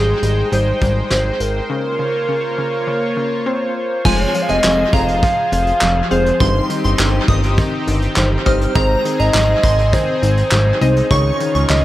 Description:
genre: synth-pop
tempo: 102 BPM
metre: 4/4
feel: straight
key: F minor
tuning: A4 = 440 Hz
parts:
  - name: hollow clarinet-like synth lead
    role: melody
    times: 0.0-11.8 s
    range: Ab4 to F5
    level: -19 LUFS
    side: equal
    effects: chorus, dub echo
  - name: lush unison pad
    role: sustained chords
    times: 0.0-11.8 s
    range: Db3 to G5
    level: -24 LUFS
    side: equal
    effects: chorus
  - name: analog pluck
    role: arpeggios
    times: 0.0-11.8 s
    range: Db3 to F5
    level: -25 LUFS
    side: left 1 dB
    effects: chorus, dub echo
  - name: fat analog bass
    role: bass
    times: 0.0-11.8 s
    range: F1 to Db2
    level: -17 LUFS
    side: equal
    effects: none
  - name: soft brush drum kit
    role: drums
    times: 0.2-11.8 s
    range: crash cymbal, handclaps, hi-hat, kick drum, snare drum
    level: -20 LUFS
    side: equal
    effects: dub echo
  - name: shimmering bell with halo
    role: second line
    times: 4.1-11.8 s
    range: Ab5 to F6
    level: -24 LUFS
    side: right 1 dB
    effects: ensemble chorus, dub echo
  - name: funky polysynth comp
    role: accompaniment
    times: 4.1-11.8 s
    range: G3 to Db5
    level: -22 LUFS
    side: left 2 dB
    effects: chorus, dub echo
room: light reverb, small room ambience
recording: echo-heavy mix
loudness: -14 LUFS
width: side -15 dB against mid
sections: 0.0-4.0 A section; 4.0-11.8 B section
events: break 1.7-4.0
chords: 0.0 Abmaj7; 1.7 Bbmadd9; 4.0 Fm; 6.4 Cm/G; 8.8 Ab; 11.1 Dbadd9

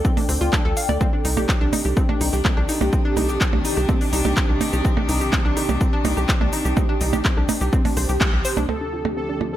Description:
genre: melodic techno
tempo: 125 BPM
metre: 4/4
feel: straight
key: unclear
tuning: A4 = 440 Hz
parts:
  - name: analog pluck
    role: arpeggios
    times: 0.0-9.6 s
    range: C4 to F5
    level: -26 LUFS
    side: left 1 dB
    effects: chorus, sidechain pumping, dub echo
  - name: tight sequencer bass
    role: bass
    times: 0.0-9.6 s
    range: Bb1 to D2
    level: -24 LUFS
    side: equal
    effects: sidechain pumping
  - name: electronic kick drum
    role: drums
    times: 0.0-8.3 s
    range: none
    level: -21 LUFS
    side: equal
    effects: none
  - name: techno drum kit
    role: drums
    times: 0.0-9.5 s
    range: handclaps, hi-hat, percussion blips, rim click, shaker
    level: -24 LUFS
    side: right 3 dB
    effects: none
  - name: ethereal airy pad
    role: texture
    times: 0.0-9.6 s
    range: G4 to Eb6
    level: -29 LUFS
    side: right 2 dB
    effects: ensemble chorus, built-in reverb, phaser, sidechain pumping
  - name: rich chamber string section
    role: sustained chords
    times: 1.0-9.6 s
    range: C3 to D4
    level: -30 LUFS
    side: left 2 dB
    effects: sidechain pumping, low-pass filter
  - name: soft supersaw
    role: melody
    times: 8.7-9.6 s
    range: A4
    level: -29 LUFS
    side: equal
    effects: analog chorus, vintage 12-bit sampler grit, sidechain pumping
  - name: analog drone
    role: drone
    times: 8.9-9.6 s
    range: D3 to A3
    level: -35 LUFS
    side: left 1 dB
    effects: chorus, sidechain pumping
room: light reverb, digital ambience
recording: none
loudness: -18 LUFS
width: side -12 dB against mid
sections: 0.0-8.7 A section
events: band accent 8.2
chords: 0.0 Dm7; 1.0 Cmadd9; 8.7 Dm7

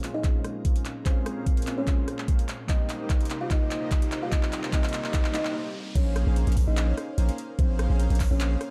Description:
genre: future bass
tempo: 147 BPM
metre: 4/4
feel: half-time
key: Bb minor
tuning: A4 = 440 Hz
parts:
  - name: glassy digital keys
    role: accompaniment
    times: 0.0-6.0 s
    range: G3 to F4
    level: -40 LUFS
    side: equal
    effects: chorus, phaser, sidechain pumping, delay
  - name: ethereal airy pad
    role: sustained chords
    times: 0.0-5.5 s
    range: Bb2 to Bb4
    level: -45 LUFS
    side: equal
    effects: ensemble chorus, built-in reverb, sidechain pumping
  - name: Celtic harp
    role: arpeggios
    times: 0.0-1.6, 6.0-8.7 s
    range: Ab4 to Bb5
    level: -46 LUFS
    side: equal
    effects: none
  - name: soft supersaw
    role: riff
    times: 0.0-8.6 s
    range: Bb3 to F5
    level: -39 LUFS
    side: equal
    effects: sidechain pumping, low-pass filter
  - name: trap drum kit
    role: drums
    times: 0.0-8.7 s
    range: crash cymbal, handclaps, hi-hat, rim click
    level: -39 LUFS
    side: equal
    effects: high-pass filter on hats, high-pass filter on snare, high-pass filter on cymbals
  - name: riser and noise sweep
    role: sound effects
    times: 2.3-6.0 s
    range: none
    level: -49 LUFS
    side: equal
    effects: none
  - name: buzzing kalimba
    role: melody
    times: 0.1-8.7 s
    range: C4 to F5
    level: -36 LUFS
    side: equal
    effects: sidechain pumping, delay
  - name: electronic kick drum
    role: drums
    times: 0.2-8.3 s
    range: none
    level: -27 LUFS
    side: equal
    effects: none
  - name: long sustained 808-style bass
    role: bass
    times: 6.0-8.6 s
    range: Bb1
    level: -26 LUFS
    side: equal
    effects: sidechain pumping
room: light reverb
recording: dark, warm production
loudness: -26 LUFS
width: mono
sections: 0.0-6.0 A section; 6.0-8.7 B section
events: build-up 0.0-6.0; drum fill 0.0-5.5; filter sweep on supersaw synth 0.0-6.0; stop 5.5-6.0; drop 6.0-8.7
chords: 0.0 Bbm9; 2.5 Cm7; 6.0 Bbm9

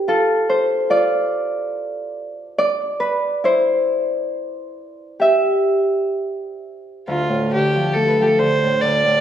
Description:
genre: celtic folk, Celtic slow air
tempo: 63-73 BPM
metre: 4/4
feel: rubato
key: D dorian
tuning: A4 = 440 Hz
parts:
  - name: Celtic harp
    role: accompaniment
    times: 0.0-9.2 s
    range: D2 to E5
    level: -18 LUFS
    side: equal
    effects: none
  - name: warm fiddle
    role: melody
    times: 7.1-9.2 s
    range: F4 to D5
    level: -16 LUFS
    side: equal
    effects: none
room: wet recital hall reverb, RT60 1.5 s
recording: recorded in a church or concert hall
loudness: -16 LUFS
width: side -10 dB against mid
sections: 0.0-7.1 A section; 7.1-9.2 B section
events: harp solo 0.0-7.1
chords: 0.0 N.C.; 3.4 C; 7.1 Dm

